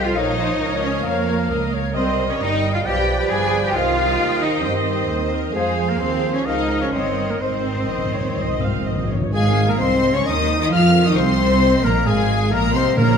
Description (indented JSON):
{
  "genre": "quick classical-period movement for symphony orchestra",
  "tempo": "133 BPM",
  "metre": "4/4",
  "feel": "rubato",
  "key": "Ab major",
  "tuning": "A4 = 440 Hz",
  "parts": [
    { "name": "clear symphonic violin section", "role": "melody", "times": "0.0-13.2 s", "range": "Eb5 to F6", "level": "-28 LUFS", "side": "left 3 dB", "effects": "none" },
    { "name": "bright large flute ensemble", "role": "second line", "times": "0.0-13.2 s", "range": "Ab4 to Ab5", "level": "-30 LUFS", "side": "equal", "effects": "none" },
    { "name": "clear clarinet", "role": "second line", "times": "0.0-13.2 s", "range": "Ab4 to F5", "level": "-28 LUFS", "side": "left 4 dB", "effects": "none" },
    { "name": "rich studio violin section", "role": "second line", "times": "0.0-13.2 s", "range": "Ab4 to Ab5", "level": "-28 LUFS", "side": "left 6 dB", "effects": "none" },
    { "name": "warm oboe", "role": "second line", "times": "0.0-13.2 s", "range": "Ab4 to Ab5", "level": "-30 LUFS", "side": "right 1 dB", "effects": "none" },
    { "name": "mellow bassoon", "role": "accompaniment", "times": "0.0-9.1 s", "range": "Eb3 to G3", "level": "-29 LUFS", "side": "right 2 dB", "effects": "none" },
    { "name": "rich chamber viola section", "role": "accompaniment", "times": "0.0-13.2 s", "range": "Ab3 to F5", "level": "-26 LUFS", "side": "right 1 dB", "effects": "none" },
    { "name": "rich chamber double bass section", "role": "bass", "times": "0.0-13.2 s", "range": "G1 to G2", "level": "-23 LUFS", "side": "right 3 dB", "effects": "none" },
    { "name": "rich symphonic cello section", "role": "bass", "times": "0.0-13.2 s", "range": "Ab2 to Ab4", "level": "-24 LUFS", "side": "right 2 dB", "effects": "none" },
    { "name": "mellow French horn section", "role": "sustained chords", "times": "0.2-13.2 s", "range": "Ab3 to F5", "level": "-26 LUFS", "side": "left 4 dB", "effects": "none" },
    { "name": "timpani", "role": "percussion", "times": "7.4-9.3, 13.0-13.2 s", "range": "Ab2 to Bb2", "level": "-24 LUFS", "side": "left 1 dB", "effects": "none" }
  ],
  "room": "wet scoring stage reverb, RT60 1.4 s",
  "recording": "dark, warm production",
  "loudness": "-17 LUFS",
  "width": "side -6 dB against mid",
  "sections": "0.0-9.3 A section; 9.3-13.2 A section",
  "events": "timpani fill 7.4-9.3",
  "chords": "0.2 Bbm; 2.0 Cm; 2.9 G7/B; 3.8 Cm; 5.6 Fm; 6.5 Bbm7/Db; 6.9 Eb7/G; 7.4 Ab; 10.3 Eb5; 11.2 Ab"
}